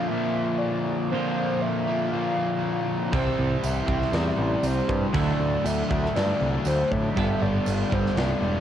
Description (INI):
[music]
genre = rock, shoegaze and dream pop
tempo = 119 BPM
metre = 4/4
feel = straight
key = unclear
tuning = A4 = 440 Hz
[part]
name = hollow clarinet-like synth lead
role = melody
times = 0.0-8.6 s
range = C5 to F5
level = -30 LUFS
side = equal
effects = chorus, cassette tape, tape echo
[part]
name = cranked stack guitar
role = riff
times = 0.0-8.6 s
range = G2 to D4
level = -29 LUFS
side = right 1 dB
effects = overdrive, cassette tape
[part]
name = overdriven semi-hollow guitar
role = riff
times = 0.0-8.6 s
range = G2 to E4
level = -30 LUFS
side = left 8 dB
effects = wide subtle chorus, cassette tape
[part]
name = semi-hollow electric guitar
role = riff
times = 0.0-8.6 s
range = Bb2 to A4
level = -32 LUFS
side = right 10 dB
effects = reverse reverb, cassette tape
[part]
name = growling picked electric bass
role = bass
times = 3.1-8.6 s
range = E1 to A2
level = -26 LUFS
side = right 1 dB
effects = overdrive
[part]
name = big rock drum kit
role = drums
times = 3.1-8.3 s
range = crash cymbal, kick drum, snare drum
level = -31 LUFS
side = equal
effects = none
[part]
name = tambourine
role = percussion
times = 3.6-7.8 s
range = none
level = -42 LUFS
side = right 9 dB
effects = none
[sound]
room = light reverb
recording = home recording on cassette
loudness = -22 LUFS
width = side -10 dB against mid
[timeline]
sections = 0.0-8.6 A section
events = none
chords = 0.0 Bbadd9; 3.1 C; 5.1 Dadd9; 7.2 Gadd9